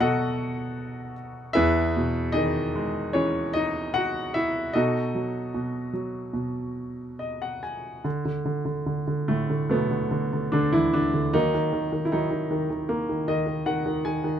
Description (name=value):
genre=classical, lyrical solo piano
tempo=74 BPM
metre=4/4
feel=uneven beats, rubato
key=unclear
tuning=A4 = 441 Hz
part: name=warm grand piano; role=solo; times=0.0-14.4 s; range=E2 to G#5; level=-24 LUFS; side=equal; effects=none
room=light reverb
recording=close, detailed microphones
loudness=-24 LUFS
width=side -9 dB against mid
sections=0.0-8.1 A section; 8.1-14.4 B section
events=grand piano fill 6.8-8.1, 12.9-14.4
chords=0.0 B7; 1.6 Emaj7; 4.7 B7; 8.1 D6; 11.3 D#m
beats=0.00 0.78 | 1.56 2.34 3.13 3.94 | 4.75 5.54 6.35 7.21 | 8.06 8.88 9.71 10.54 | 11.35 12.13 12.90 13.66